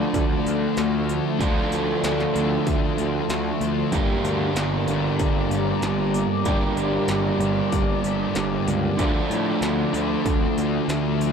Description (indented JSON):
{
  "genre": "rock, shoegaze and dream pop",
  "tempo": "95 BPM",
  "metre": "4/4",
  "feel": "straight",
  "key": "D minor",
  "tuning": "A4 = 440 Hz",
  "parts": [
    { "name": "deep dark ambient pad", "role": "sustained chords", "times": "0.0-11.3 s", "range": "F4 to D6", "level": "-31 LUFS", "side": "left 3 dB", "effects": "chorus, built-in reverb" },
    { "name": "electric guitar through a small old amp", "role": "arpeggios", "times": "0.0-11.3 s", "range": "F3 to G4", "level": "-31 LUFS", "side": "left 2 dB", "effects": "analog chorus, analog delay" },
    { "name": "overdriven semi-hollow guitar", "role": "riff", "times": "0.0-11.3 s", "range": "G2 to G4", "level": "-25 LUFS", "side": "right 8 dB", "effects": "reverse reverb" },
    { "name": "thick fuzz guitar", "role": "riff", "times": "0.0-11.3 s", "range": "G2 to D4", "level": "-27 LUFS", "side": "left 9 dB", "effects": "distortion, ensemble chorus" },
    { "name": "fuzz picked electric bass", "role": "bass", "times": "0.0-11.3 s", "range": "G1 to A2", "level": "-28 LUFS", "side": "left 1 dB", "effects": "overdrive" },
    { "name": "industrial drum kit", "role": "drums", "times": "0.1-11.3 s", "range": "hi-hat, kick drum, snare drum", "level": "-27 LUFS", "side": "equal", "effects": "distortion" }
  ],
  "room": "moderate plate reverb, RT60 2.3 s",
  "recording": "dreamy mix soaked in reverb",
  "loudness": "-20 LUFS",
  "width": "side -6 dB against mid",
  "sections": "0.0-11.3 A section",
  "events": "none",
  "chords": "0.0 Dmadd9; 3.9 Gm; 9.0 Dmadd9"
}